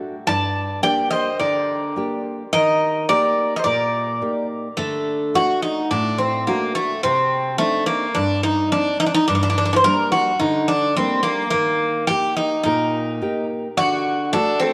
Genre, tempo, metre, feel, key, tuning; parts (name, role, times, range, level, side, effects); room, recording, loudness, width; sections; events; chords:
greek folk, Greek bouzouki band; 107 BPM; 4/4; straight; D phrygian dominant; A4 = 441 Hz
nylon-string guitar; accompaniment; 0.0-14.7 s; G2 to G4; -27 LUFS; equal
Greek bouzouki; melody; 0.3-14.7 s; A3 to A5; -21 LUFS; equal
mandolin; second line; 0.3-4.5, 12.7-14.7 s; A4 to D5; -29 LUFS; equal
wet echo chamber reverb, RT60 2.6 s; -20 LUFS; mono
0.0-4.8 A section; 4.8-14.7 B section
0.3 Gm; 2.5 Eb; 4.8 D; 7.0 Cmadd9; 9.3 Gm; 11.5 Eb; 13.8 D